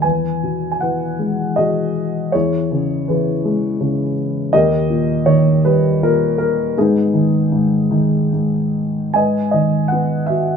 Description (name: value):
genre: classical, lyrical solo piano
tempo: 70-84 BPM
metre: 3/4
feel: rubato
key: G# minor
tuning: A4 = 440 Hz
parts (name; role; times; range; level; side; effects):
- dark concert grand piano; solo; 0.0-10.6 s; D#2 to G#5; -15 LUFS; left 1 dB; none
room: moderate studio ambience, RT60 0.5 s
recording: minimal, uncompressed stereo recording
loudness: -15 LUFS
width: side -6 dB against mid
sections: 0.0-9.1 A section; 9.1-10.6 B section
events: none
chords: 0.0 Eadd9; 2.3 C#m/E; 4.5 D#; 6.8 G#m; 9.1 G#m7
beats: | 0.04 0.82 1.58 | 2.35 3.09 3.81 | 4.53 5.27 6.02 | 6.76 7.51 8.32 | 9.14 9.91